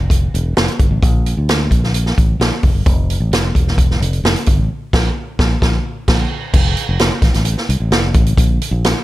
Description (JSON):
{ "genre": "uptempo 1960s-style soul", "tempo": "130 BPM", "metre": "4/4", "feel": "straight", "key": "F major", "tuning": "A4 = 442 Hz", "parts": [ { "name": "fingered electric bass", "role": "bass", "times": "0.0-8.9 s", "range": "E1 to D2", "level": "-17 LUFS", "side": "equal", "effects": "none" }, { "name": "swinging big-band drum kit", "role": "drums", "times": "0.1-9.0 s", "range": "crash cymbal, hi-hat, kick drum, snare drum", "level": "-14 LUFS", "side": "equal", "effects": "none" } ], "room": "little or no reverb", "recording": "none", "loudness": "-13 LUFS", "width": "side -16 dB against mid", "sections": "0.0-6.5 A section; 6.5-9.0 B section", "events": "band accent 4.7-6.5", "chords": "none" }